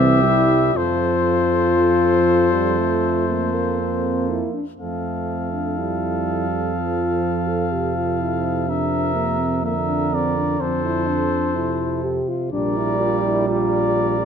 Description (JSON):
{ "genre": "classical, brass quintet", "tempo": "61 BPM", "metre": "4/4", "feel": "uneven beats, rubato", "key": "F major", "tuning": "A4 = 438 Hz", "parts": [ { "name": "warm trumpet", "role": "melody", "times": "0.0-14.2 s", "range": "C5 to F5", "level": "-24 LUFS", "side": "left 9 dB", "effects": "none" }, { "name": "warm flugelhorn", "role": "second line", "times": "0.0-14.2 s", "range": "G4 to Bb4", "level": "-28 LUFS", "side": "right 10 dB", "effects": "none" }, { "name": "dark French horn", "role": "accompaniment", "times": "0.0-14.2 s", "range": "Bb3 to A4", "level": "-23 LUFS", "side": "left 3 dB", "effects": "none" }, { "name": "mellow trombone", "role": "accompaniment", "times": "0.0-14.2 s", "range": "C3 to Bb3", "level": "-27 LUFS", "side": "right 5 dB", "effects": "none" }, { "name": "mellow tuba", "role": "bass", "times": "0.0-14.2 s", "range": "Bb1 to F2", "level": "-24 LUFS", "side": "right 5 dB", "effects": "none" } ], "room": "light reverb", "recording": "close, detailed microphones", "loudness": "-18 LUFS", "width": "side -7 dB against mid", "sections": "0.0-4.8 A section; 4.8-14.2 A section", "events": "none", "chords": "0.0 C; 0.8 F; 8.7 C7/F; 10.6 F; 12.5 Bb" }